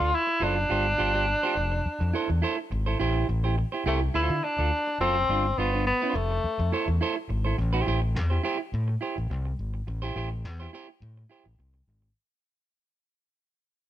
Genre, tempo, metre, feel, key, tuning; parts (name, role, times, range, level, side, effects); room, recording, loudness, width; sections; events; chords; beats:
disco; 105 BPM; 4/4; straight; A minor; A4 = 444 Hz
warm tenor saxophone; melody; 0.0-7.0 s; A3 to F4; -26 LUFS; left 1 dB
clean electric guitar; accompaniment; 0.0-12.1 s; D4 to D5; -30 LUFS; right 6 dB
overdriven fingered electric bass; bass; 0.0-12.1 s; F1 to D3; -27 LUFS; left 1 dB
light reverb; -24 LUFS; side -12 dB against mid
0.0-7.6 A section; 7.6-12.2 B section
fade-out 7.6-12.2
0.0 Dm7; 0.7 G7sus4; 1.6 Fmaj7; 3.0 Am7; 4.1 Dm7; 5.3 G7sus4; 6.2 Fmaj7; 7.6 Am7
0.13 | 0.70 1.28 1.85 2.42 | 3.00 3.57 4.14 4.72 | 5.29 5.87 6.44 7.01 | 7.58 8.16 8.73 9.30 | 9.87 10.44 11.01 11.59